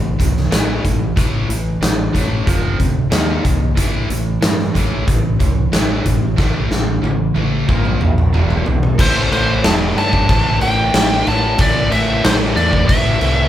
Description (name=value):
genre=hard rock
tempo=92 BPM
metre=4/4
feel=straight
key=A minor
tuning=A4 = 442 Hz
part: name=sludgy distorted guitar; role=riff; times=0.0-13.5 s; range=E2 to D#4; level=-23 LUFS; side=left 4 dB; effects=overdrive
part: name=tight distorted guitar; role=riff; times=0.0-13.5 s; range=E2 to D#4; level=-24 LUFS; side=right 6 dB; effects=distortion
part: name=growling fingered electric bass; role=bass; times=0.0-13.5 s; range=E1 to G2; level=-20 LUFS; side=equal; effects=overdrive
part: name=huge arena drum kit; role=drums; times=0.2-13.4 s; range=crash cymbal, hi-hat, kick drum, snare drum, toms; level=-16 LUFS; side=equal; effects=none
part: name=biting lead guitar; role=melody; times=9.0-13.5 s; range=C5 to A5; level=-18 LUFS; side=equal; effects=overdrive
part: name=distorted electric guitar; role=riff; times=9.0-13.5 s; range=A2 to E4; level=-24 LUFS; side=left 1 dB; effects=distortion
room=light reverb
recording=band playing live in one room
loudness=-13 LUFS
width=side -12 dB against mid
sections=0.0-9.0 A section; 9.0-13.5 B section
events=drum fill 6.4-9.0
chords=0.0 A5; 2.5 F5; 3.1 D#5; 3.8 A5; 7.7 Bb5; 8.3 E5; 9.0 Am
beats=0.51 | 1.16 1.81 2.47 3.12 | 3.77 4.42 5.08 5.73 | 6.38 7.03 7.69 8.34 | 8.99 9.64 10.29 10.94 | 11.59 12.24 12.89